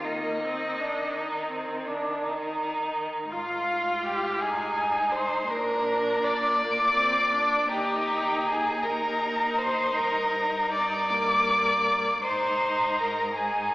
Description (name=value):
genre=classical, slow romantic movement for string quartet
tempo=54 BPM (dotted quarters)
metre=12/8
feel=rubato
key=C minor, Eb major from 3.3 s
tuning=A4 = 440 Hz
part: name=dark violin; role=melody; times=0.0-13.7 s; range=Eb5 to D6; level=-28 LUFS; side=left 1 dB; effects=none
part: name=rich violin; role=second line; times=0.0-13.7 s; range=Eb4 to D5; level=-28 LUFS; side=equal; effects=none
part: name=rich viola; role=accompaniment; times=0.0-13.7 s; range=Bb3 to F4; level=-29 LUFS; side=equal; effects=none
part: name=rich cello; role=bass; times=0.0-13.7 s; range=Eb2 to Eb3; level=-37 LUFS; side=right 1 dB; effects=none
room=wet scoring stage reverb, RT60 2.0 s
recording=recorded in a church or concert hall, AM radio sound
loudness=-24 LUFS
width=side -18 dB against mid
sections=0.0-13.7 A section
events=none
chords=0.0 Cm/Eb; 3.3 Fm7/Ab; 5.5 Bb; 7.7 Eb; 10.0 Eb/G; 12.2 Abadd9